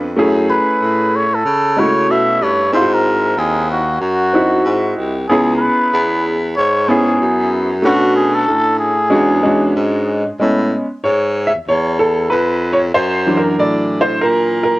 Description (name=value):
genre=hip hop, jazz-hop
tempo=94 BPM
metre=4/4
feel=swing 59% on 16ths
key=A major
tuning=A4 = 442 Hz
part: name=warm upright piano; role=accompaniment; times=0.0-14.8 s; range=E3 to E5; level=-15 LUFS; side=equal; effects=cassette tape
part: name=breathy baritone saxophone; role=bass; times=0.0-14.8 s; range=B#1 to C#3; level=-18 LUFS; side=equal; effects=none
part: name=trumpet with cup mute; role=melody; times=0.5-9.7 s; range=F#4 to E5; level=-16 LUFS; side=equal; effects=cassette tape
room=light reverb, small room ambience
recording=home recording on cassette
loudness=-12 LUFS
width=side -19 dB against mid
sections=0.0-10.4 A section; 10.4-14.8 B section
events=upright piano solo 10.4-14.8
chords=0.2 F#m7; 2.7 G#7b13; 5.3 C#m7; 7.8 Bm7; 9.1 E13; 10.4 Amaj7; 12.9 F#7alt